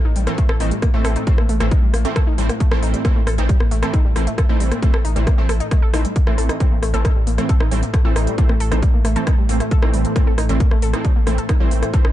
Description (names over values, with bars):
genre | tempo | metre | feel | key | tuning
driving peak-time techno | 135 BPM | 4/4 | straight | A minor | A4 = 440 Hz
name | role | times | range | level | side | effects
saturated sub bass | bass | 0.0-12.1 s | A1 | -20 LUFS | equal | sidechain pumping, low-pass filter
metallic inharmonic drone | drone | 0.0-12.1 s | A2 to A3 | -29 LUFS | left 1 dB | chorus, built-in reverb, sidechain pumping
warbly dusty pluck | riff | 0.1-12.1 s | G3 to A4 | -27 LUFS | equal | chorus, tube saturation, sidechain pumping, tape echo
techno drum kit | drums | 0.2-12.1 s | hi-hat, rim click | -27 LUFS | left 1 dB | overdrive
rave stab | stabs | 0.3-12.1 s | E3 to C4 | -25 LUFS | right 2 dB | chorus, built-in reverb, sidechain pumping, ping-pong delay
electronic kick drum | drums | 0.4-12.0 s | none | -16 LUFS | equal | overdrive
room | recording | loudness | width
digital ambience | dark, warm production, nothing above 10.4 kHz | -15 LUFS | side -13 dB against mid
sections
0.0-12.1 A section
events
none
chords
0.0 Am